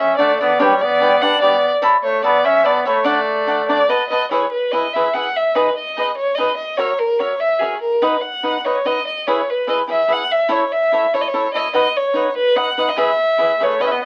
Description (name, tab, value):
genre	mexican folk, mariachi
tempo	146 BPM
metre	3/4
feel	straight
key	D major, E major from 4.3 s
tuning	A4 = 440 Hz
part	warm violin	melody	0.0-14.1 s	G#4 to F#5	-19 LUFS	equal	none
part	warm trumpet	second line	0.0-3.9, 13.6-14.1 s	G3 to D4	-22 LUFS	equal	none
part	cavaquinho	accompaniment	0.2-13.9 s	D4 to B5	-21 LUFS	equal	none
room	moderate studio reverb, RT60 0.5 s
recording	very old 78 rpm record, vinyl crackle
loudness	-17 LUFS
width	mono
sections	0.0-4.3 A section; 4.3-14.1 B section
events	none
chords	0.0 D; 0.6 G; 1.8 Aadd9; 3.1 D; 3.9 B7; 4.3 E; 5.6 G#m; 6.8 F#7; 8.0 B; 9.3 E; 10.5 A; 11.7 B; 13.0 E